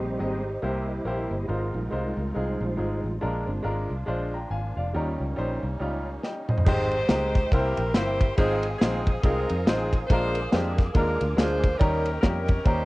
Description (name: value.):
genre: uptempo gospel.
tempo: 140 BPM.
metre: 4/4.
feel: swing 59% on 8ths.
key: Ab major.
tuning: A4 = 440 Hz.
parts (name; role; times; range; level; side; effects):
bright upright piano; accompaniment; 0.0-12.8 s; Ab2 to Bb5; -29 LUFS; equal; cassette tape.
musette accordion; sustained chords; 0.0-6.6 s; F3 to G4; -40 LUFS; right 1 dB; cassette tape.
percussive tonewheel organ; sustained chords; 0.0-12.8 s; G3 to Eb6; -34 LUFS; right 1 dB; slow rotary speaker, chorus vibrato, cassette tape.
fingered electric bass; bass; 0.0-12.8 s; F1 to F2; -29 LUFS; equal; none.
modern studio drum kit; drums; 6.2-12.8 s; crash cymbal, kick drum, ride cymbal, snare drum, toms; -23 LUFS; equal; cassette tape.
clear saxophone section; melody; 6.7-12.8 s; C4 to C5; -29 LUFS; equal; analog delay.
room: light reverb.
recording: home recording on cassette.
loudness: -23 LUFS.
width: side -20 dB against mid.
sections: 0.0-6.7 A section; 6.7-12.8 B section.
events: tonewheel organ solo 0.0-6.7; drum fill 6.2-6.7.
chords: 0.0 Abmaj7; 0.6 C7; 1.5 Fm7/Ab; 3.2 Bb7; 4.9 Eb7; 6.7 Abmaj7; 7.5 C7; 8.4 Fm7/Ab; 10.1 Bb7; 11.8 Eb7.